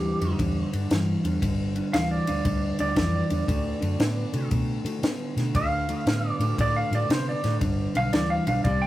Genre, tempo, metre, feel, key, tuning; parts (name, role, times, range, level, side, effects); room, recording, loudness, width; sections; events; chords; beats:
electric blues shuffle; 116 BPM; 4/4; swing 66% on 8ths; G mixolydian; A4 = 441 Hz
clean lap steel guitar; second line; 0.0-8.9 s; G4 to G5; -29 LUFS; right 1 dB; analog delay
electric guitar through a small old amp; riff; 0.0-8.9 s; G2 to B3; -28 LUFS; equal
vintage muted fingered electric bass; bass; 0.0-8.9 s; G1 to D3; -28 LUFS; equal
compact cocktail drum kit; drums; 0.2-8.8 s; kick drum, ride cymbal, snare drum; -28 LUFS; left 1 dB
moderate studio ambience, RT60 0.5 s; rough rehearsal-room recording; -23 LUFS; side -15 dB against mid
0.0-8.9 A section
electric slide guitar solo 0.0-8.9
0.0 G5; 3.5 D5; 7.6 G
0.39 0.91 | 1.42 1.94 2.45 2.97 | 3.49 4.00 4.52 5.04 | 5.55 6.07 6.58 7.10 | 7.62 8.13 8.65